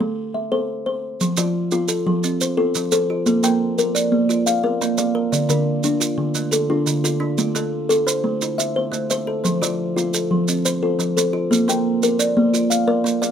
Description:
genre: southern african traditional, mbira-style interlocking cycle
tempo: 116 BPM (dotted quarters)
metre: 12/8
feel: straight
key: F major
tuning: A4 = 440 Hz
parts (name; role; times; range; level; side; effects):
- kalimba; arpeggios; 0.0-13.3 s; D3 to G5; -20 LUFS; left 2 dB; none
- maracas; percussion; 1.2-13.3 s; none; -24 LUFS; right 7 dB; none
- kalimba; arpeggios; 1.4-13.3 s; D3 to F5; -22 LUFS; right 2 dB; none
room: little or no reverb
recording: close, detailed microphones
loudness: -18 LUFS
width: side -8 dB against mid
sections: 0.0-1.2 A section; 1.2-13.3 A section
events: none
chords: 0.0 Am; 1.2 F; 3.3 Bb; 5.3 Dm; 7.4 Am; 9.4 F; 11.5 Bb

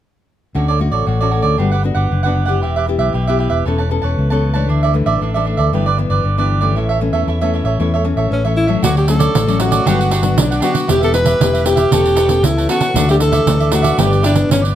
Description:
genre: samba and choro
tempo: 116 BPM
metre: 4/4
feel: straight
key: D major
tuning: A4 = 442 Hz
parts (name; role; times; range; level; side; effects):
- nylon-string guitar; accompaniment; 0.5-14.8 s; G2 to A4; -20 LUFS; left 4 dB; none
- cavaquinho; accompaniment; 0.6-14.7 s; D4 to A5; -20 LUFS; right 6 dB; none
- fingered electric bass; bass; 0.6-14.7 s; E1 to E2; -17 LUFS; left 1 dB; none
- clear alto saxophone; melody; 8.3-14.6 s; C#4 to B4; -16 LUFS; equal; plate reverb
- pandeiro; percussion; 8.8-14.8 s; none; -18 LUFS; right 5 dB; none
room: moderate studio reverb, RT60 0.8 s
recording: none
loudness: -13 LUFS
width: side -11 dB against mid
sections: 0.6-8.8 A section; 8.8-14.8 B section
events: none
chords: 0.6 Dmaj7; 1.6 Gmaj7; 2.6 Em; 3.7 Aadd9/E; 4.7 Dsus2; 5.7 G6; 6.8 A; 8.8 Dmaj7; 9.9 Gmaj7; 10.9 Em; 11.9 Aadd9/E; 13.0 Dsus2; 14.0 G6

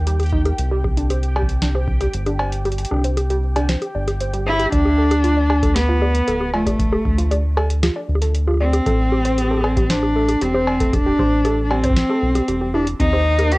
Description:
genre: IDM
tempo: 116 BPM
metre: 4/4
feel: straight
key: unclear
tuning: A4 = 438 Hz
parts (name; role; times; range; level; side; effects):
- round analog bass; bass; 0.0-13.6 s; D1 to Eb2; -20 LUFS; equal; tube saturation
- bubbling stepped-filter texture; texture; 0.0-4.7, 13.0-13.6 s; C4 to G5; -34 LUFS; equal; chorus, built-in reverb, cassette tape
- warbly dusty pluck; arpeggios; 0.1-13.5 s; C4 to D5; -25 LUFS; right 1 dB; chorus, cassette tape, analog delay, plate reverb
- booming analog drum machine; drums; 0.1-13.6 s; bongos, cowbell, hi-hat, snare drum; -24 LUFS; left 1 dB; overdrive, cassette tape
- electronic kick drum; drums; 0.3-13.1 s; none; -22 LUFS; equal; overdrive, cassette tape
- warm cello; melody; 4.5-13.6 s; A3 to G4; -19 LUFS; equal; cassette tape, analog delay, plate reverb
room: light reverb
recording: home recording on cassette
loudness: -16 LUFS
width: side -21 dB against mid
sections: 0.0-4.7 A section; 4.7-13.6 B section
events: kick drops out 2.7-4.7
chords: 0.0 Eb; 0.6 Csus2; 4.7 Dm; 8.9 Am7; 13.0 Eb5

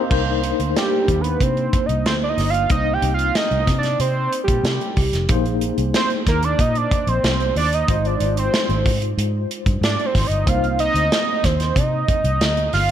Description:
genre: polished 1980s jazz-funk pop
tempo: 93 BPM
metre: 4/4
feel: straight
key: C minor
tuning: A4 = 440 Hz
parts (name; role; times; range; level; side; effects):
- tine electric piano; accompaniment; 0.0-12.9 s; Ab3 to C5; -25 LUFS; left 3 dB; overdrive, fast stereo tremolo, lush chorus
- vintage muted fingered electric bass; bass; 0.1-12.9 s; F1 to C3; -22 LUFS; equal; none
- modern studio drum kit; drums; 0.1-12.9 s; crash cymbal, hi-hat, kick drum, snare drum; -22 LUFS; equal; gated reverb
- fat analog lead; melody; 0.8-12.9 s; G4 to G5; -21 LUFS; right 3 dB; chorus, tape echo
room: light reverb, studio reverb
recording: none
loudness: -17 LUFS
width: side -10 dB against mid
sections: 0.1-12.9 A section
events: analog synth lead solo 0.1-12.9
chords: 0.1 Cm9; 5.3 Bb9sus4; 7.9 Ab6; 10.5 Cm9

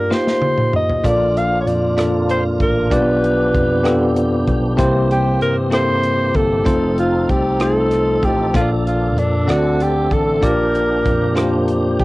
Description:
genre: slow gospel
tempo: 64 BPM (dotted quarters)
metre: 6/8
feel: straight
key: Bb major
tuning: A4 = 440 Hz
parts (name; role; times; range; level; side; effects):
- warm alto saxophone; melody; 0.0-12.0 s; D4 to F5; -19 LUFS; equal; cassette tape
- bell-like tine electric piano; accompaniment; 0.0-12.0 s; G2 to F#5; -18 LUFS; left 1 dB; medium stereo tremolo, cassette tape
- modern studio drum kit; drums; 0.1-12.0 s; hi-hat, kick drum, rim click, snare drum, toms; -21 LUFS; equal; cassette tape
- tonewheel organ; sustained chords; 1.0-12.0 s; E3 to A4; -26 LUFS; right 2 dB; slow rotary speaker, chorus vibrato, cassette tape
- slap bass; bass; 1.0-12.0 s; F1 to G2; -23 LUFS; equal; none
room: moderate booth ambience, RT60 0.2 s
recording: home recording on cassette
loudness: -14 LUFS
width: side -20 dB against mid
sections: 0.0-12.0 A section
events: drum fill 0.1-1.0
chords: 0.1 F9sus4; 1.0 Bbmaj7; 2.9 G7/B; 4.8 C7; 6.7 F7; 8.5 Bbmaj7; 9.5 D7; 10.4 Gm7/Bb

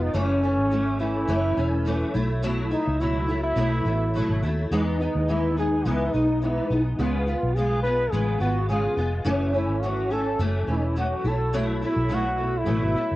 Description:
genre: indie pop, bedroom pop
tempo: 106 BPM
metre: 4/4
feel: swing 55% on 16ths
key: unclear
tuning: A4 = 440 Hz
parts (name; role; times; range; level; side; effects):
- clear trombone; melody; 0.0-13.2 s; C#4 to B4; -26 LUFS; equal; analog chorus, cassette tape, analog delay
- picked steel-string acoustic guitar; accompaniment; 0.0-13.2 s; F#2 to E#4; -26 LUFS; left 1 dB; ensemble chorus, warbly pitch drift, cassette tape
- vintage muted fingered electric bass; bass; 0.0-13.2 s; E1 to E2; -26 LUFS; equal; transformer saturation
room: light reverb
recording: home recording on cassette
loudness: -22 LUFS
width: side -17 dB against mid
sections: 0.0-13.2 A section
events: none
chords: 0.2 F#m7; 2.1 B7sus4; 4.7 Emaj7; 7.0 C#7; 9.3 F#m7; 11.3 B7sus4

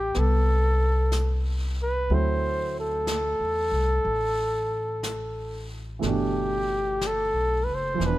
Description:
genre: jazz ballad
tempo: 61 BPM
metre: 4/4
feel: swing 67% on 8ths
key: G major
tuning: A4 = 440 Hz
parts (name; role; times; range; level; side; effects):
- warm flugelhorn; melody; 0.0-8.2 s; G4 to C5; -26 LUFS; equal; none
- warm grand piano; accompaniment; 0.0-8.2 s; B2 to E4; -32 LUFS; right 5 dB; none
- upright bass; bass; 0.0-8.2 s; E1 to E2; -26 LUFS; equal; none
- jazz brush drum kit; drums; 0.1-8.2 s; brushed snare drum, hi-hat, snare drum; -38 LUFS; left 1 dB; none
room: little or no reverb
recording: none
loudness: -23 LUFS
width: side -16 dB against mid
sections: 0.0-8.2 A section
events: none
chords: 0.0 Am11; 2.1 D9; 6.0 G6

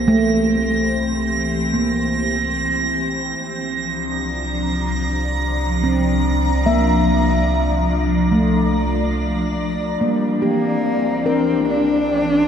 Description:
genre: ambient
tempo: 72 BPM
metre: 4/4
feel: straight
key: C mixolydian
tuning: A4 = 443 Hz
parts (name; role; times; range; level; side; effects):
- evolving wavetable pad; sustained chords; 0.0-12.5 s; E3 to Bb5; -21 LUFS; left 2 dB; ensemble chorus, built-in reverb, phaser
- handpan; arpeggios; 0.0-12.5 s; A3 to E5; -21 LUFS; right 1 dB; diffuse ambient delay
- warm sub bass; bass; 0.0-12.5 s; C2; -24 LUFS; equal; none
- drifting glass-harmonics texture; texture; 0.0-12.5 s; G5 to Bb6; -27 LUFS; right 4 dB; chorus, built-in reverb
- dark cello; melody; 10.0-12.5 s; G3 to D4; -20 LUFS; equal; none
room: wet cathedral reverb, RT60 5.3 s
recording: in a vast, echoing space, lossy compression artefacts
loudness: -17 LUFS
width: side -8 dB against mid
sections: 0.0-10.0 A section; 10.0-12.5 B section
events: fade-in on ambient pad 0.0-10.0; fade-in on sub bass 0.0-10.0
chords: 0.0 C7; 3.4 Bb/C; 10.0 Cadd9

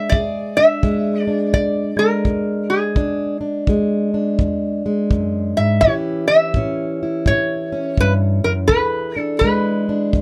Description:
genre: acoustic country blues, solo or duo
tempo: 84 BPM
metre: 4/4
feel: swing 62% on 8ths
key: E mixolydian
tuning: A4 = 440 Hz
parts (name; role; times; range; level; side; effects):
- metal-body resonator slide guitar; melody; 0.0-10.2 s; G#4 to E5; -20 LUFS; equal; none
- fingerpicked plugged-in steel-string acoustic guitar; accompaniment; 0.0-10.2 s; E2 to G#4; -22 LUFS; equal; none
- kick drum; drums; 0.1-10.2 s; none; -21 LUFS; equal; none
room: moderate booth ambience, RT60 0.2 s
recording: none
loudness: -18 LUFS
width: mono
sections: 0.0-10.2 A section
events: none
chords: 0.0 E7; 5.8 A7; 8.7 E7

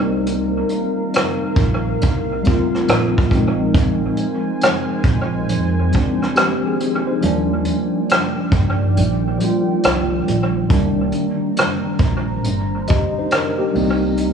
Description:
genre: lo-fi hip hop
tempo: 69 BPM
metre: 4/4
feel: swing 65% on 16ths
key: unclear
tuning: A4 = 435 Hz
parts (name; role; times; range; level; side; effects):
- mellow tine electric piano; accompaniment; 0.0-14.3 s; Eb3 to Eb5; -20 LUFS; equal; medium stereo tremolo
- deep dark ambient pad; sustained chords; 0.0-14.3 s; Eb3 to Bb5; -25 LUFS; right 1 dB; chorus, built-in reverb
- upright bass; bass; 0.0-14.3 s; G1 to G2; -21 LUFS; right 1 dB; none
- vintage brush drum kit; drums; 0.3-14.3 s; hi-hat, kick drum, rim click; -19 LUFS; equal; analog delay
room: light reverb, studio reverb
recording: echo-heavy mix, cassette tape, studio ambience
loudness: -16 LUFS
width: side -6 dB against mid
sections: 0.0-14.3 A section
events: kick muted 9.0-10.7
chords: 0.0 F7sus4/C; 3.3 Bb9sus4; 7.2 Ebmaj7; 10.7 Cm7; 13.7 F7sus4/C

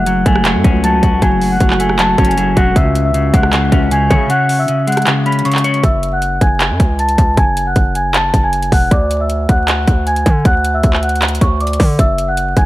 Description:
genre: hip hop, trap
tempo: 156 BPM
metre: 4/4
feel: half-time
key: F# minor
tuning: A4 = 440 Hz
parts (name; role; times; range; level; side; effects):
- large celesta; melody; 0.0-12.7 s; C#5 to B6; -17 LUFS; equal; low-pass filter, digital delay
- clean electric guitar; accompaniment; 0.0-5.8 s; C#3 to C#5; -16 LUFS; left 2 dB; warbly pitch drift, low-pass filter
- dark analog pad; sustained chords; 0.0-5.8 s; A3 to F#5; -23 LUFS; equal; chorus
- distorted 808-style bass; bass; 0.0-12.7 s; E1 to D3; -17 LUFS; equal; distortion
- trap drum kit; drums; 0.1-12.7 s; handclaps, hi-hat, kick drum, rim click; -14 LUFS; equal; none
room: little or no reverb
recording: vinyl crackle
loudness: -11 LUFS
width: side -16 dB against mid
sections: 0.0-5.8 A section; 5.8-12.7 B section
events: kick muted 4.3-5.8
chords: 0.0 F#madd9; 2.8 C#m; 5.8 F#madd9; 8.9 Dadd9; 12.0 F#sus2

